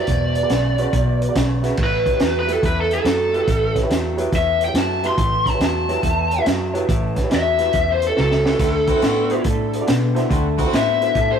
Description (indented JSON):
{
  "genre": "electric blues shuffle",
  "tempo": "141 BPM",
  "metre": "4/4",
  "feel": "swing 66% on 8ths",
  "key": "unclear",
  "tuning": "A4 = 438 Hz",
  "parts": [
    { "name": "lead guitar through a small cranked amp", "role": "melody", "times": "0.0-11.4 s", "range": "A4 to C6", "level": "-20 LUFS", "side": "equal", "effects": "overdrive, tape echo" },
    { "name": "electric guitar through a small old amp", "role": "riff", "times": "0.0-11.4 s", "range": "E2 to B3", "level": "-25 LUFS", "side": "left 1 dB", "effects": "none" },
    { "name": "vintage muted fingered electric bass", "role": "bass", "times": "0.1-11.4 s", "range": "E1 to B2", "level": "-23 LUFS", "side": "equal", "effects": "none" },
    { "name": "crunchy breakbeat drum kit", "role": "drums", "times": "0.1-11.3 s", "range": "crash cymbal, hi-hat, kick drum, snare drum, splash cymbal", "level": "-22 LUFS", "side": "right 1 dB", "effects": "none" },
    { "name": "dark upright piano", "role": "accompaniment", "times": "0.4-11.1 s", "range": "E4 to E5", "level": "-27 LUFS", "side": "right 3 dB", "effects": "none" },
    { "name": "clear horn section", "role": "stabs", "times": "8.6-11.1 s", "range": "C4 to F#4", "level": "-28 LUFS", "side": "equal", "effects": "none" }
  ],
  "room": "light reverb",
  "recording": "rough rehearsal-room recording, warm saturation",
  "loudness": "-16 LUFS",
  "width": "side -7 dB against mid",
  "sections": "0.0-1.8 A section; 1.8-11.4 B section",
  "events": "lead electric guitar solo 1.8-11.4; drum fill 8.2-8.6",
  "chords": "0.1 E9; 1.8 A9; 8.6 D9",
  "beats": "| 0.08 0.51 0.93 1.36 | 1.78 2.21 2.63 3.06 | 3.49 3.91 4.34 4.76 | 5.19 5.62 6.04 6.47 | 6.90 7.32 7.75 8.18 | 8.60 9.03 9.45 9.88 | 10.31 10.73 11.16"
}